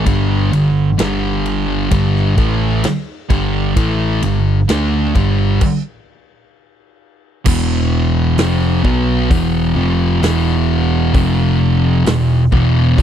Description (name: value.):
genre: stoner and doom metal.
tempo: 65 BPM.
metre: 4/4.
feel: straight.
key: E minor.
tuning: A4 = 439 Hz.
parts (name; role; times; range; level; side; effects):
thick fuzz guitar; riff; 0.0-13.0 s; E2 to D4; -18 LUFS; left 8 dB; distortion.
thick fuzz guitar; riff; 0.0-13.0 s; E2 to D4; -17 LUFS; right 8 dB; distortion.
overdriven picked electric bass; bass; 0.0-13.0 s; E1 to D2; -18 LUFS; equal; none.
big rock drum kit; drums; 0.1-13.0 s; crash cymbal, hi-hat, kick drum, ride cymbal, snare drum; -18 LUFS; equal; none.
room: little or no reverb.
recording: dry, close 1970s-style studio recording.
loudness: -13 LUFS.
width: side -9 dB against mid.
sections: 0.0-7.5 A section; 7.5-13.0 B section.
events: stop 5.6-7.5.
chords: 0.1 G5; 7.5 E5; 11.1 F5; 12.1 E5.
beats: | 0.06 0.98 1.91 2.83 | 3.76 4.68 5.61 6.53 | 7.45 8.37 9.29 10.22 | 11.14 12.06 12.98.